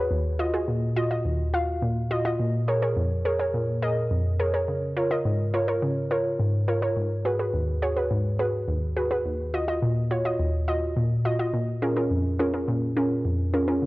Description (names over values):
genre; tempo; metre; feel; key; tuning
pop; 105 BPM; 4/4; straight; unclear; A4 = 440 Hz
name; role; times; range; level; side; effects
warbly dusty pluck; solo; 0.0-13.9 s; D#2 to E#5; -23 LUFS; equal; chorus
room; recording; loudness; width
light reverb; dry, gritty hardware recording; -23 LUFS; side -20 dB against mid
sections
0.0-11.5 A section; 11.5-13.9 A section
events
none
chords
0.1 D#madd9; 2.4 A#m7; 4.7 C#6; 7.0 G#m7; 9.3 D#madd9; 11.5 A#m7